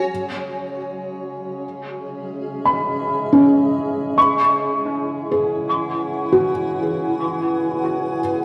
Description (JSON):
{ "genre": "ambient", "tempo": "free time", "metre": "none", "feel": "none", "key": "C# minor", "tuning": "A4 = 444 Hz", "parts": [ { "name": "granular cloud pad", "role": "sustained chords", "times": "0.0-8.4 s", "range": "G#3 to G#5", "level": "-27 LUFS", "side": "equal", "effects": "built-in reverb" }, { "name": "felt-muted upright piano", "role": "arpeggios", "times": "0.0-8.4 s", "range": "C#4 to C#6", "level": "-20 LUFS", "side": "equal", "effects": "dub echo" }, { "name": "pedal harmonium", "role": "drone", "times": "0.1-8.4 s", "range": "C#3 to G#3", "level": "-35 LUFS", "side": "equal", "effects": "none" } ], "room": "wet echo chamber reverb, RT60 2.2 s", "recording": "echo-heavy mix", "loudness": "-20 LUFS", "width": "mono", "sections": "0.1-8.4 A section", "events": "fade-in on harmonium 0.1-8.4", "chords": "0.1 C#m", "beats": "free time" }